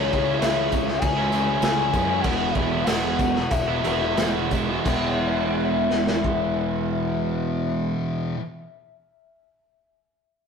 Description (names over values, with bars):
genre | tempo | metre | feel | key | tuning
rock, shoegaze and dream pop | 87-102 BPM | 4/4 | straight | E major | A4 = 440 Hz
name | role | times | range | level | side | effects
pure breathy sine lead | melody | 0.0-7.9 s | C#5 to G#5 | -27 LUFS | left 7 dB | chorus, analog delay
analog string pad | sustained chords | 0.0-7.9 s | E4 to G#5 | -36 LUFS | left 2 dB | none
crunchy overdriven guitar | riff | 0.0-8.4 s | E2 to E4 | -26 LUFS | right 5 dB | none
overdriven semi-hollow guitar | riff | 0.0-8.4 s | E2 to C#4 | -34 LUFS | equal | none
thick fuzz guitar | riff | 0.0-8.4 s | E2 to C#4 | -32 LUFS | left 5 dB | distortion
modern bright fingered electric bass | bass | 0.0-7.9 s | E1 to F#2 | -30 LUFS | right 1 dB | none
raw garage drum kit | drums | 0.1-6.4 s | crash cymbal, kick drum, snare drum | -26 LUFS | right 1 dB | none
tambourine | percussion | 0.4-5.2 s | none | -46 LUFS | left 5 dB | none
room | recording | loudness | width
moderate stone room reverb, RT60 1.1 s | rough rehearsal-room recording, warm saturation | -20 LUFS | side -6 dB against mid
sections
0.0-4.9 A section; 4.9-7.6 B section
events
slowing down 0.0-4.9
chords
0.0 C#m; 2.2 Eadd9